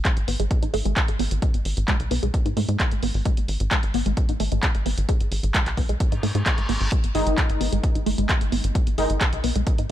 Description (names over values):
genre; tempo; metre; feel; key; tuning
driving peak-time techno; 131 BPM; 4/4; straight; G# phrygian; A4 = 441 Hz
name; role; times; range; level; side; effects
tight sequencer bass; bass; 0.0-9.9 s; G#1 to G#2; -24 LUFS; equal; sidechain pumping
electronic kick drum; drums; 0.0-9.8 s; none; -22 LUFS; equal; none
tight sequenced synth; riff; 0.1-9.8 s; G#3 to D#4; -29 LUFS; equal; chorus, phaser, overdrive, sidechain pumping, ping-pong delay
punchy analog drum machine; drums; 0.1-9.9 s; handclaps, hi-hat; -28 LUFS; equal; sidechain pumping on hats
reverse cymbal; sound effects; 6.2-6.9 s; none; -32 LUFS; left 1 dB; none
rave stab; stabs; 7.1-9.0 s; D#3 to D#4; -27 LUFS; left 1 dB; chorus, built-in reverb, cassette tape, sidechain pumping, ping-pong delay
room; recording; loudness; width
little or no reverb; none; -20 LUFS; side -12 dB against mid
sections
0.0-9.9 A section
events
filter sweep on synth arpeggio sound 0.0-9.9; reverse cymbal 6.2-6.9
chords
0.0 G#5